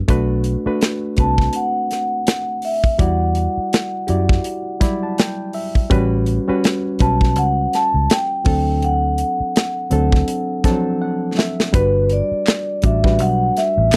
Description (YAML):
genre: lush 1970s-style soul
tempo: 82 BPM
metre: 4/4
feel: swing 58% on 16ths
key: G major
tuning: A4 = 439 Hz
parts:
  - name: reed electric piano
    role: accompaniment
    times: 0.0-14.0 s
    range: F3 to B5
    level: -24 LUFS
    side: equal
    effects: none
  - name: vintage muted fingered electric bass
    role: bass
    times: 0.1-14.0 s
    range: G1 to F#2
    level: -21 LUFS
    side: equal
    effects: none
  - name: modern studio drum kit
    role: drums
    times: 0.1-14.0 s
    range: hi-hat, kick drum, snare drum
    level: -19 LUFS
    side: equal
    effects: none
  - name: vibraphone with soft mallets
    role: melody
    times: 1.2-14.0 s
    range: B4 to A5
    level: -23 LUFS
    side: equal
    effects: none
  - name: group handclap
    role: percussion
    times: 12.5-14.0 s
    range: none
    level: -28 LUFS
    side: equal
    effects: none
room: light reverb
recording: dry, close 1970s-style studio recording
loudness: -18 LUFS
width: mono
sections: 0.1-11.7 A section; 11.7-14.0 B section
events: reed electric piano fill 4.5-5.9, 10.3-11.7; drum fill 11.0-11.7; vibraphone solo 11.7-14.0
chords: 0.1 Bm7; 3.0 Em9; 5.9 A13; 8.5 D7; 11.7 Gmaj7